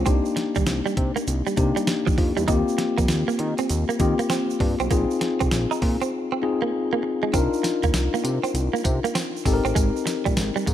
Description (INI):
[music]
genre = R&B, new jack swing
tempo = 99 BPM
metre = 4/4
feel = swing 64% on 16ths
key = C minor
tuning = A4 = 440 Hz
[part]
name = mellow tine electric piano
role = accompaniment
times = 0.0-10.7 s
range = Bb3 to Bb4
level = -24 LUFS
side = left 4 dB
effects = none
[part]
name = direct-recorded clean electric guitar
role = riff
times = 0.0-10.7 s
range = F3 to Eb4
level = -28 LUFS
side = right 7 dB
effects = lush chorus
[part]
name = fat analog bass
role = bass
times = 0.0-10.7 s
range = Ab1 to Eb3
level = -25 LUFS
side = equal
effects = none
[part]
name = clean 12-bit digital drum machine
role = drums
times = 0.1-10.7 s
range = hi-hat, kick drum, snare drum, tambourine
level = -25 LUFS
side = equal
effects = none
[part]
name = egg shaker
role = percussion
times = 0.1-10.7 s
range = none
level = -39 LUFS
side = right 10 dB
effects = none
[sound]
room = light reverb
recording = none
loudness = -20 LUFS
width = side -11 dB against mid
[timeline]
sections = 0.0-7.3 A section; 7.3-10.7 B section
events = break 6.1-7.3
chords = 0.1 Cm9; 2.5 Eb6; 4.9 Bb9sus4; 7.3 Cm11; 9.5 Abmaj7